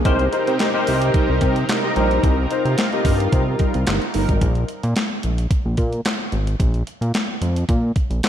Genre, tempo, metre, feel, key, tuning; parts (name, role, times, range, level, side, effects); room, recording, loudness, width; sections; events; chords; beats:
early-eighties boogie funk; 110 BPM; 4/4; straight; A4 = 440 Hz
barky tine electric piano; accompaniment; 0.0-3.7 s; Eb4 to Eb5; -22 LUFS; left 2 dB; overdrive, ensemble chorus
fat analog bass; bass; 0.0-8.2 s; G1 to C3; -20 LUFS; equal
lush unison pad; sustained chords; 0.1-4.4 s; C3 to Bb4; -26 LUFS; equal; chorus
clean 12-bit digital drum machine; drums; 0.1-8.3 s; handclaps, hi-hat, kick drum, snare drum; -21 LUFS; equal
mellow synth brass; second line; 1.1-4.4 s; G3 to Bb4; -27 LUFS; right 2 dB; chorus, phaser, ping-pong delay
light reverb; -17 LUFS; side -10 dB against mid
0.0-4.4 A section; 4.4-8.3 B section
0.1 Cm7; 4.4 N.C.
| 0.05 0.60 1.14 1.69 | 2.23 2.78 3.32 3.87 | 4.42 4.96 5.51 6.05 | 6.60 7.14 7.69 8.23